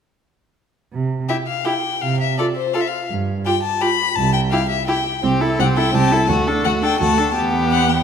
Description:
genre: quick classical-period movement for string quartet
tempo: 168 BPM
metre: 3/4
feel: rubato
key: C major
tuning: A4 = 440 Hz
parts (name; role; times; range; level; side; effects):
- warm cello; bass; 0.9-8.0 s; C2 to C3; -22 LUFS; right 4 dB; none
- rich violin; melody; 1.3-8.0 s; C5 to B5; -21 LUFS; left 7 dB; none
- warm violin; second line; 1.3-8.0 s; F#4 to A4; -23 LUFS; left 2 dB; none
- warm viola; accompaniment; 1.3-8.0 s; A3 to F4; -22 LUFS; right 2 dB; none
room: wet recital hall reverb, RT60 1.6 s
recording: none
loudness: -16 LUFS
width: side -7 dB against mid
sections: 0.9-8.0 A section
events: none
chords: 0.9 C; 2.0 F5/C; 3.1 G7; 4.2 C; 6.3 D; 7.4 Em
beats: | 0.93 1.29 1.65 | 2.02 2.38 2.74 | 3.10 3.46 3.82 | 4.17 4.53 4.88 | 5.23 5.59 5.94 | 6.29 6.65 7.01 | 7.36 7.72

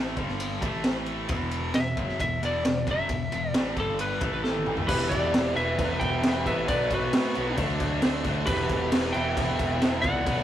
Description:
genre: hard rock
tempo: 134 BPM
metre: 4/4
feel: straight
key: E minor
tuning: A4 = 440 Hz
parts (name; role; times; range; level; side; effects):
- high-gain distorted guitar; riff; 0.0-10.4 s; E2 to D4; -34 LUFS; left 8 dB; distortion
- high-gain distorted guitar; riff; 0.0-10.4 s; E2 to D4; -34 LUFS; right 8 dB; distortion
- picked electric bass; bass; 0.0-10.4 s; E1 to A2; -33 LUFS; equal; none
- raw garage drum kit; drums; 0.2-10.4 s; crash cymbal, kick drum, ride cymbal, snare drum, toms; -28 LUFS; equal; none
- lightly driven lead guitar; melody; 1.8-10.4 s; A4 to G5; -29 LUFS; left 1 dB; none
- dark smooth lead guitar; second line; 4.9-10.4 s; F#4 to E5; -33 LUFS; right 4 dB; overdrive
- distorted electric guitar; riff; 4.9-10.4 s; B2 to G4; -35 LUFS; equal; none
room: light reverb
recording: rough rehearsal-room recording, warm saturation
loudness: -24 LUFS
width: side -11 dB against mid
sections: 0.0-4.9 A section; 4.9-10.4 B section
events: drum fill 4.4-4.9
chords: 0.2 G5; 0.6 A5; 1.3 E5; 3.8 G5; 4.2 A5; 4.9 Em; 6.7 Bm; 7.6 D; 8.5 Em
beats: 0.40 0.85 | 1.30 1.75 2.20 2.65 | 3.10 3.54 3.99 4.44 | 4.89 5.34 5.79 6.24 | 6.69 7.13 7.58 8.03 | 8.48 8.93 9.37 9.82 | 10.27

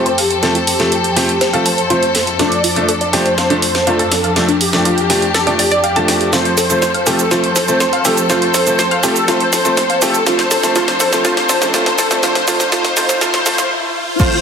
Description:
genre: progressive house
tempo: 122 BPM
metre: 4/4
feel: straight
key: unclear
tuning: A4 = 443 Hz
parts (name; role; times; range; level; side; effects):
- wide unison lead; melody; 0.0-14.4 s; G4 to D5; -18 LUFS; equal; ensemble chorus, cassette tape, dub echo
- rich symphonic string section; sustained chords; 0.0-14.4 s; F2 to A4; -21 LUFS; left 2 dB; sidechain pumping
- bright grand piano; stabs; 0.0-14.3 s; F3 to C5; -19 LUFS; right 1 dB; sidechain pumping, low-pass filter, dub echo
- analog pluck; arpeggios; 0.1-14.2 s; D4 to A5; -20 LUFS; equal; chorus, sidechain pumping, dub echo
- house drum kit; drums; 0.1-14.4 s; crash cymbal, hi-hat, shaker, snare drum; -17 LUFS; right 1 dB; high-pass filter on snare, sidechain pumping on hats, high-pass filter on hats, sidechain pumping on perc, high-pass filter on perc, sidechain pumping on cymbals, high-pass filter on cymbals, high-pass filter on room
- riser and impact; sound effects; 9.9-14.4 s; none; -26 LUFS; left 2 dB; none
- electronic kick drum; drums; 14.2-14.3 s; none; -14 LUFS; equal; none
room: wet scoring stage reverb, RT60 1.9 s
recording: dense, heavily limited modern master, high-pass filter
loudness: -12 LUFS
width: side -6 dB against mid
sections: 0.0-14.2 A section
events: build-up 0.0-14.2; drum fill 0.0-13.7; filter sweep on synth pluck 0.0-14.2; filter sweep on analog synth lead 0.0-14.2; stop 13.7-14.2; impact 14.2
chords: 0.0 F; 2.4 Dm/F; 6.3 F; 10.3 Dm/F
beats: | 0.43 0.92 1.41 1.90 | 2.39 2.89 3.38 3.87 | 4.36 4.85 5.34 5.84 | 6.33 6.82 7.31 7.80 | 8.30 8.79 9.28 9.77 | 10.26 10.76 11.25 11.74 | 12.23 12.72 13.21 13.71 | 14.20

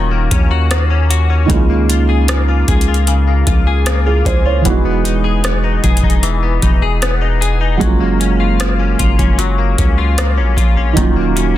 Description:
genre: contemporary R&B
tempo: 76 BPM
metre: 4/4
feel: straight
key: unclear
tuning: A4 = 440 Hz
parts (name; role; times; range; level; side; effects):
- felt-muted upright piano; accompaniment; 0.0-11.6 s; Eb3 to Db5; -19 LUFS; right 5 dB; none
- direct-recorded clean electric guitar; arpeggios; 0.0-11.6 s; Db3 to Ab4; -19 LUFS; left 8 dB; analog chorus, digital delay
- long sustained 808-style bass; bass; 0.0-11.6 s; Eb1 to Eb2; -15 LUFS; equal; none
- booming analog drum machine; drums; 0.3-11.5 s; hi-hat, kick drum, rim click; -16 LUFS; equal; none
- synth chime; texture; 11.4-11.6 s; Gb4; -23 LUFS; right 1 dB; ensemble chorus
room: digital ambience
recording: dense, heavily limited modern master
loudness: -11 LUFS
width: side -13 dB against mid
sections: 0.0-11.6 A section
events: none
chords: 0.0 Ebm7; 1.5 Db6; 4.7 Emaj7; 7.8 Gbmaj7; 11.0 Ebm7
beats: 0.70 | 1.50 2.28 3.07 3.86 | 4.65 5.44 6.23 7.02 | 7.81 8.60 9.39 10.18 | 10.97

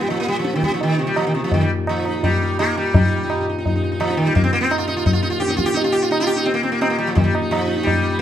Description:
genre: indian classical, Hindustani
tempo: 170 BPM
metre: 4/4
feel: straight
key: Eb raga bhupali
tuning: A4 = 440 Hz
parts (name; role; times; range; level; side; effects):
- sitar; melody; 0.0-8.2 s; C3 to G4; -19 LUFS; right 1 dB; none
- hand-pumped harmonium; drone; 0.0-8.2 s; Eb2 to Bb2; -26 LUFS; left 2 dB; none
- tabla; percussion; 0.1-8.0 s; none; -21 LUFS; left 1 dB; none
room: moderate recital hall reverb, RT60 1.4 s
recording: dark, warm production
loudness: -17 LUFS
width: side -10 dB against mid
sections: 0.0-2.9 A section; 2.9-8.2 B section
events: speeding up 0.0-8.2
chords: none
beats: | 0.08 0.44 0.80 1.16 | 1.52 1.88 2.23 2.59 | 2.94 3.30 3.65 4.01 | 4.36 4.71 5.07 5.42 | 5.77 6.12 6.47 6.82 | 7.17 7.52 7.87

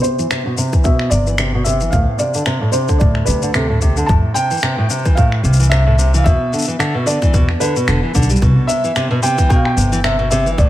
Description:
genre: folktronica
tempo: 111 BPM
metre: 4/4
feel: swing 56% on 16ths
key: C major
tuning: A4 = 441 Hz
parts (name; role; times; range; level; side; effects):
- felt-muted upright piano; melody; 0.0-10.7 s; A4 to A5; -20 LUFS; equal; tape echo
- nylon-string guitar; arpeggios; 0.0-10.7 s; A2 to G3; -18 LUFS; equal; low-pass filter, tape echo
- electronic shaker and finger snaps; drums; 0.0-10.7 s; none; -23 LUFS; left 2 dB; studio reverb
- electronic kick drum; drums; 0.7-10.7 s; none; -14 LUFS; equal; studio reverb
- upright bass; bass; 1.1-10.7 s; E1 to F2; -16 LUFS; equal; tube saturation
room: small room ambience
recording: none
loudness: -13 LUFS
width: side -14 dB against mid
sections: 0.0-10.7 A section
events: filter sweep on nylon-string guitar 0.0-10.7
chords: 0.0 Cmaj7; 1.9 D5; 4.1 Fmaj7; 6.3 E7(no3); 8.4 Cmaj7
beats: 0.31 0.85 1.39 | 1.93 2.47 3.01 3.55 | 4.09 4.63 5.17 5.71 | 6.25 6.79 7.33 7.88 | 8.41 8.96 9.50 10.04 | 10.58

